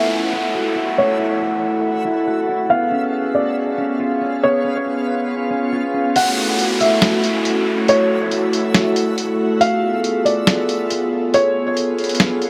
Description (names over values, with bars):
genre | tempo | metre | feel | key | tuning
hip hop, atmospheric cloud-rap | 139 BPM | 4/4 | half-time | F# minor | A4 = 440 Hz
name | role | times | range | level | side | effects
felt-muted upright piano | melody | 0.0-11.7 s | C#5 to F#5 | -22 LUFS | equal | low-pass filter, digital delay
glass harmonica | sustained chords | 0.0-12.5 s | A3 to F#5 | -22 LUFS | equal | low-pass filter
mellow electric guitar | arpeggios | 0.0-6.2 s | A3 to F#4 | -26 LUFS | equal | low-pass filter, digital delay
downlifter | sound effects | 0.0-2.7, 6.2-9.6 s | none | -28 LUFS | equal | none
backwards swelling texture | texture | 0.0-12.5 s | A3 to E5 | -31 LUFS | equal | built-in reverb
lo-fi sampler-style drum kit | drums | 6.2-12.5 s | crash cymbal, hi-hat, snare drum | -22 LUFS | equal | overdrive
room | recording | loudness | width
moderate huge ambient reverb, RT60 7.2 s | none | -18 LUFS | mono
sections
0.0-6.2 A section; 6.2-12.5 B section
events
filter sweep 0.0-6.2; kick muted 6.2-12.5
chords
0.0 F#m7; 2.7 C#7; 6.2 F#m7; 9.6 C#7